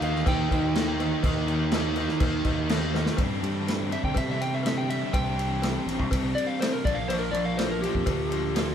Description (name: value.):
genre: classic rock.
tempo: 123 BPM.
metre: 4/4.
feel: straight.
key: unclear.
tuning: A4 = 440 Hz.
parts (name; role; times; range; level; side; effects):
electric slide guitar; melody; 0.0-8.7 s; G4 to G5; -31 LUFS; left 1 dB; analog delay.
biting overdriven guitar; riff; 0.0-8.7 s; G2 to Eb4; -32 LUFS; left 5 dB; tremolo.
distorted electric guitar; riff; 0.0-8.7 s; G2 to G4; -31 LUFS; right 4 dB; distortion.
fuzz guitar; riff; 0.0-3.2 s; Eb3 to Eb4; -35 LUFS; left 1 dB; none.
growling fingered electric bass; bass; 0.0-8.7 s; A1 to C3; -30 LUFS; equal; overdrive.
vintage drum kit; drums; 0.0-8.7 s; crash cymbal, kick drum, ride cymbal, snare drum; -29 LUFS; equal; none.
cowbell; percussion; 0.3-8.7 s; none; -39 LUFS; left 2 dB; none.
room: moderate studio reverb, RT60 0.6 s.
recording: band playing live in one room.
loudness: -24 LUFS.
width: side -8 dB against mid.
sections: 0.0-3.2 A section; 3.2-8.7 B section.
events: drum fill 2.9; electric slide guitar solo 3.2-8.7.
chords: 0.0 Eb; 3.2 Gsus4; 5.1 Csus2; 6.8 Bb6.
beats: 0.26 0.75 | 1.23 1.72 2.21 2.70 | 3.18 3.67 4.16 4.65 | 5.14 5.63 6.12 6.61 | 7.09 7.58 8.07 8.56.